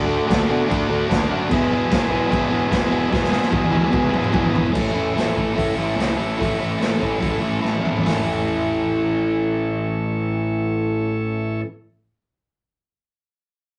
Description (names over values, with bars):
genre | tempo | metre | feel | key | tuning
garage rock duo or trio | 146 BPM | 4/4 | straight | A major | A4 = 440 Hz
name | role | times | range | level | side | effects
combo organ | sustained chords | 0.0-11.6 s | F#4 to E5 | -32 LUFS | equal | none
crunchy overdriven guitar | riff | 0.0-11.7 s | E2 to G#4 | -23 LUFS | equal | none
growling picked electric bass | bass | 0.0-11.6 s | E1 to B2 | -33 LUFS | equal | overdrive
raw garage drum kit | drums | 0.3-8.1 s | crash cymbal, hi-hat, kick drum, snare drum, toms | -25 LUFS | equal | none
room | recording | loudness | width
moderate small room reverb, RT60 0.5 s | rough rehearsal-room recording, nothing above 10.3 kHz | -21 LUFS | mono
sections
0.0-4.7 A section; 4.7-8.0 B section; 8.0-11.3 C section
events
drum fill 3.1-4.7, 7.6-8.0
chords
0.0 D; 1.5 E; 4.7 A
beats
0.28 0.69 1.09 | 1.50 1.91 2.31 2.72 | 3.12 3.53 3.93 4.34 | 4.75 5.16 5.57 5.98 | 6.39 6.80 7.21 7.62 | 8.03 8.44 8.85 9.27 | 9.68 10.09 10.50 10.91